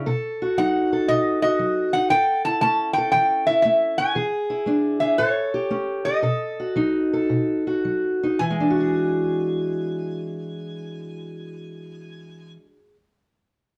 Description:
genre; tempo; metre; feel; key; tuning
acoustic country blues, solo or duo; 105-118 BPM; 4/4; swing 68% on 8ths; unclear; A4 = 440 Hz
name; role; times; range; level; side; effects
fingerpicked steel-string acoustic guitar; accompaniment; 0.0-13.0 s; A2 to A4; -25 LUFS; equal; none
metal-body resonator slide guitar; melody; 0.6-12.5 s; C#5 to A5; -23 LUFS; equal; none
room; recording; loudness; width
light reverb; dark, warm production; -22 LUFS; mono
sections
0.0-8.4 A section; 8.4-13.0 B section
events
slowing down 4.1-8.4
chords
0.1 B7; 2.1 A; 4.1 E7; 5.2 A7; 6.2 B7; 8.4 E9

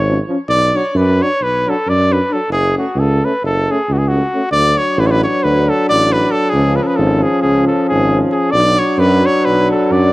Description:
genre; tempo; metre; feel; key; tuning
balkan folk, Balkan brass band; 268 BPM (eighths); 9/8; straight; unclear; A4 = 440 Hz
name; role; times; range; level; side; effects
warm trumpet; melody; 0.0-10.1 s; F#4 to D5; -16 LUFS; equal; none
mellow tuba; bass; 0.0-10.1 s; F#1 to F#2; -16 LUFS; equal; none
clear trombone; accompaniment; 0.1-10.1 s; E#3 to A3; -21 LUFS; right 2 dB; none
mellow euphonium; accompaniment; 0.1-10.1 s; C#4 to D4; -20 LUFS; left 2 dB; none
room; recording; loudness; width
light reverb, small room ambience; home recording on cassette; -12 LUFS; side -19 dB against mid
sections
0.0-4.5 A section; 4.5-10.1 A section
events
none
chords
0.5 Bm; 2.5 F#m; 4.5 D; 6.5 C#; 8.5 Bm

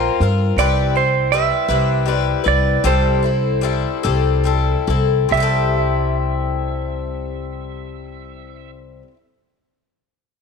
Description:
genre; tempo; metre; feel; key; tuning
rock; 46-54 BPM (dotted quarters); 6/8; straight; C major; A4 = 440 Hz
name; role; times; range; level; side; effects
clean lap steel guitar; melody; 0.0-8.7 s; C5 to E5; -21 LUFS; right 10 dB; none
picked twelve-string acoustic guitar; accompaniment; 0.0-9.2 s; C3 to B4; -21 LUFS; left 11 dB; none
upright bass; bass; 0.0-9.0 s; C2 to G2; -20 LUFS; equal; none
room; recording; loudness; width
light reverb, studio ambience; 1960s-style stereo with parts hard left and right; -15 LUFS; side -5 dB against mid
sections
0.0-5.3 A section; 5.3-7.9 B section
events
slowing down 0.6-5.3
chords
0.0 Bbsus2; 0.6 Cmaj7; 2.8 C6

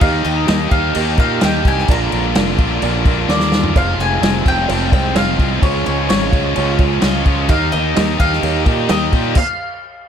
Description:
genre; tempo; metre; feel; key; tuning
classic rock; 128 BPM; 4/4; straight; unclear; A4 = 440 Hz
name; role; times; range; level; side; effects
bowl-back mandolin; melody; 0.0-10.1 s; Db5 to Bb5; -22 LUFS; left 2 dB; none
warm upright piano; accompaniment; 0.0-9.3 s; F4 to Eb5; -27 LUFS; right 13 dB; none
biting overdriven guitar; riff; 0.0-9.4 s; F2 to G4; -22 LUFS; right 17 dB; none
tight distorted guitar; riff; 0.0-9.4 s; F2 to G4; -22 LUFS; left 17 dB; distortion
fuzz fingered electric bass; bass; 0.0-9.3 s; F1 to Bb2; -20 LUFS; equal; overdrive
vintage drum kit; drums; 0.0-9.5 s; crash cymbal, kick drum, snare drum, toms; -17 LUFS; left 1 dB; none
bright tonewheel organ; sustained chords; 3.8-9.3 s; C4 to Eb5; -31 LUFS; left 1 dB; none
room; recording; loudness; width
light reverb; faint mains hum; -13 LUFS; side -8 dB against mid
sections
0.0-10.1 A section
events
drum fill 3.3-3.8; stop 9.4-10.1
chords
0.0 Eb; 1.9 Bb; 3.8 Fm; 5.6 Db; 7.5 Eb; 9.4 N.C.

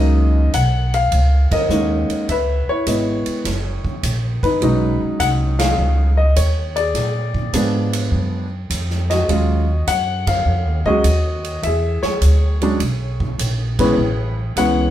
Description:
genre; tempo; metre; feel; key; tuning
jazz piano trio; 103 BPM; 4/4; swing 68% on 8ths; F# major; A4 = 440 Hz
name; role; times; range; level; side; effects
warm concert grand piano; melody; 0.0-14.9 s; Gb2 to F#5; -19 LUFS; left 1 dB; none
upright bass; bass; 0.0-14.9 s; F#1 to A#2; -18 LUFS; equal; none
swinging big-band drum kit; drums; 0.5-14.8 s; hi-hat, kick drum, ride cymbal, snare drum; -26 LUFS; right 2 dB; none
room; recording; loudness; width
moderate studio reverb, RT60 0.6 s; band playing live in one room; -16 LUFS; side -12 dB against mid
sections
0.0-14.9 A section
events
band accent 1.4, 5.5, 10.2, 13.7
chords
0.0 F#69; 2.3 C#m7; 3.5 F#; 4.6 B69; 7.0 A#7b9; 9.3 D#m11; 11.6 E13; 14.0 Amaj9

